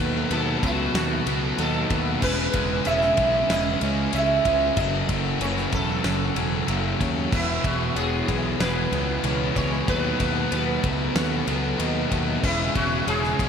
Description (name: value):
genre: post-rock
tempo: 94 BPM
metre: 4/4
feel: straight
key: unclear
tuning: A4 = 441 Hz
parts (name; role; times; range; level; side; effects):
- sitar; melody; 0.0-13.5 s; E4 to E5; -27 LUFS; right 2 dB; tape echo
- electric guitar through a small old amp; arpeggios; 0.0-13.5 s; A4 to E5; -36 LUFS; right 1 dB; wide subtle chorus, tape echo
- twangy electric guitar; arpeggios; 0.0-13.5 s; E2 to G#4; -36 LUFS; left 2 dB; none
- distorted electric guitar; riff; 0.0-13.5 s; E2 to C#4; -28 LUFS; left 10 dB; overdrive
- sludgy distorted guitar; riff; 0.0-13.5 s; E2 to C#4; -29 LUFS; right 9 dB; overdrive
- fuzz picked electric bass; bass; 0.0-13.5 s; E1 to D#2; -28 LUFS; equal; overdrive
- big rock drum kit; drums; 0.3-13.5 s; crash cymbal, kick drum, ride cymbal, snare drum; -28 LUFS; left 1 dB; none
room: wet lush hall reverb, RT60 1.9 s, small room reverb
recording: dreamy mix soaked in reverb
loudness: -21 LUFS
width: side -7 dB against mid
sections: 0.0-13.5 A section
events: none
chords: 0.0 B7; 2.2 C#m7/E; 4.8 F#m7; 7.3 E; 9.9 B7; 12.4 C#m7/E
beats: 0.31 0.94 1.58 | 2.22 2.86 3.50 4.14 | 4.77 5.41 6.05 6.69 | 7.33 7.97 8.61 9.24 | 9.88 10.52 11.16 11.80 | 12.44 13.08